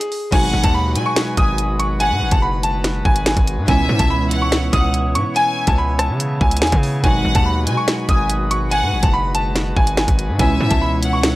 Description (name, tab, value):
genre	hip hop, drill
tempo	143 BPM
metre	4/4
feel	half-time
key	unclear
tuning	A4 = 440 Hz
part	bright concert grand piano	melody	0.0-11.4 s	G#4 to D#6	-21 LUFS	equal	none
part	drill drum kit	drums	0.0-11.3 s	crash cymbal, hi-hat, kick drum, rim click, snare drum	-18 LUFS	equal	none
part	clear studio violin section	second line	0.3-11.4 s	E5 to G#5	-25 LUFS	left 2 dB	analog delay
part	warbly lo-fi synth keys	accompaniment	0.3-11.4 s	B2 to F#4	-24 LUFS	right 1 dB	chorus
part	chamber organ, cornet	sustained chords	0.3-11.4 s	G#3 to C#5	-29 LUFS	equal	none
part	distorted 808-style bass	bass	0.3-11.4 s	F#1 to C#3	-20 LUFS	equal	distortion
room	small room ambience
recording	dry, gritty hardware recording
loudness	-15 LUFS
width	side -17 dB against mid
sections	0.3-11.4 A section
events	break 0.0-0.3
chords	0.3 G#m7; 3.7 C#m7; 7.0 G#m7; 10.4 C#m7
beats	| 0.33 0.74 1.16 1.58 | 2.00 2.42 2.84 3.26 | 3.68 4.10 4.52 4.94 | 5.36 5.78 6.20 6.62 | 7.04 7.46 7.88 8.30 | 8.72 9.14 9.55 9.97 | 10.39 10.81 11.23